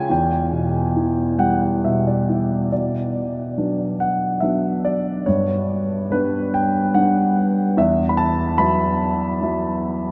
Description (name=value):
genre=classical, lyrical solo piano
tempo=71 BPM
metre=3/4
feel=rubato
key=B minor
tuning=A4 = 440 Hz
part: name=dark baby grand piano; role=solo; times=0.0-10.1 s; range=E2 to B5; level=-20 LUFS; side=equal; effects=none
room=wet cathedral reverb, RT60 7.5 s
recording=in a vast, echoing space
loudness=-20 LUFS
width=mono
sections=0.0-2.7 A section; 2.7-10.1 B section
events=grand piano fill 1.0-2.7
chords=0.1 Em; 2.7 Bm; 5.3 G; 7.8 Esus2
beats=| 0.11 0.96 1.84 | 2.72 3.57 4.42 | 5.27 6.11 6.94 | 7.77 8.60 9.43